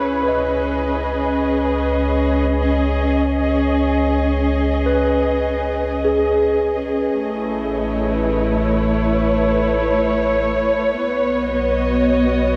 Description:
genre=ambient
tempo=free time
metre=none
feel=none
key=C# minor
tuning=A4 = 441 Hz
part: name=muted chamber string section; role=sustained chords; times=0.0-12.6 s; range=A3 to D#5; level=-20 LUFS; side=equal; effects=none
part: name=round analog bass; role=bass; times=0.0-12.6 s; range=A1 to C#2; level=-26 LUFS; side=equal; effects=tube saturation
part: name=tine electric piano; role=arpeggios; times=0.2-7.6 s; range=G#4 to D#5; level=-25 LUFS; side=equal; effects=diffuse ambient delay
room=wet lush hall reverb, RT60 2.8 s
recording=worn, warbling old tape, cassette tape, warbly pitch drift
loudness=-19 LUFS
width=mono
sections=0.0-12.6 A section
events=none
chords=0.0 C#m7; 7.1 Amaj7; 11.0 B

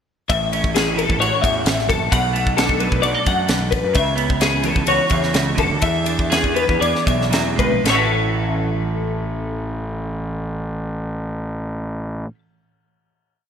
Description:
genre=math rock and midwest emo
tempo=111-131 BPM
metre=4/4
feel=straight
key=A major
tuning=A4 = 440 Hz
part: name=clean electric guitar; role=accompaniment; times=0.3-12.4 s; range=F#2 to A4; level=-23 LUFS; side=right 6 dB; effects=analog chorus
part: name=twelve-string electric guitar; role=arpeggios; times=0.3-12.4 s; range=G#4 to A5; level=-20 LUFS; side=left 5 dB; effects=ensemble chorus
part: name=fuzz fingered electric bass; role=bass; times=0.3-12.2 s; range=F#1 to F#2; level=-24 LUFS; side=equal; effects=overdrive
part: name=crisp fusion drum kit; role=drums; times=0.3-8.0 s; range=kick drum, ride cymbal, snare drum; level=-22 LUFS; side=equal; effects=none
room=moderate lush hall reverb, RT60 1.8 s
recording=bright 1980s-style digital production, lossy compression artefacts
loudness=-17 LUFS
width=side -7 dB against mid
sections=0.3-7.8 A section; 7.8-12.2 final chord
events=slowing down 4.0-7.8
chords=0.3 A6; 2.1 Bm7; 4.0 A69/C#; 5.8 E7; 7.8 A6

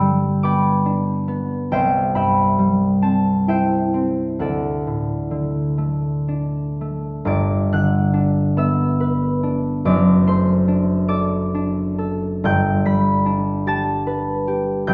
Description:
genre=classical, solo harp piece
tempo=39-50 BPM (dotted quarters)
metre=6/8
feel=rubato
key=G major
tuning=A4 = 438 Hz
part: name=concert harp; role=solo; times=0.0-14.9 s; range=F#1 to B6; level=-19 LUFS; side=equal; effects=none
room=wet recital hall reverb, RT60 1.6 s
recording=recorded in a church or concert hall, nothing above 7.8 kHz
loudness=-19 LUFS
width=mono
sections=0.0-7.3 A section; 7.3-14.9 B section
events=none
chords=0.0 G; 1.7 C; 4.4 D; 7.3 G; 9.8 D7/F#; 12.4 G

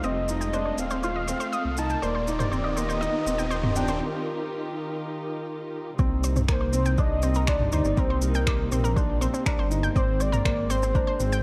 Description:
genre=piano and strings electronica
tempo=121 BPM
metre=4/4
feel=straight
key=C minor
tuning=A4 = 440 Hz
part: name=warm velvety synth lead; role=melody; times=0.0-11.4 s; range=Bb4 to A5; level=-33 LUFS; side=equal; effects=chorus
part: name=dark studio string section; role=sustained chords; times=0.0-11.4 s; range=C3 to Bb4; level=-36 LUFS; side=equal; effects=none
part: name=analog pluck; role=arpeggios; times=0.0-11.4 s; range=C4 to G5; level=-37 LUFS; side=equal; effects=chorus, sidechain pumping, digital delay
part: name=felt-muted upright piano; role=riff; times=0.0-11.4 s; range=Bb3 to F4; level=-33 LUFS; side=equal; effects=none
part: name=dark detuned saw bass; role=bass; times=0.0-11.4 s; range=Eb1 to D2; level=-30 LUFS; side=equal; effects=tube saturation, sidechain pumping
part: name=deep house drum kit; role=drums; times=0.0-11.4 s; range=finger snaps, shaker, toms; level=-34 LUFS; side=equal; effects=overdrive
part: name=riser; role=sound effects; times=0.0-4.0 s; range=none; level=-39 LUFS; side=equal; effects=none
part: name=electronic kick drum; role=drums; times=6.0-11.1 s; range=none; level=-28 LUFS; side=equal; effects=overdrive
room=light reverb, digital ambience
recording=dark, warm production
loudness=-26 LUFS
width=mono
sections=0.0-6.0 A section; 6.0-11.4 B section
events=build-up 0.0-6.0; riser 0.0-4.0; break 4.0-6.0; drop 6.0-11.4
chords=0.0 F; 2.0 Ebadd9; 6.0 Cm7; 10.0 Abadd9

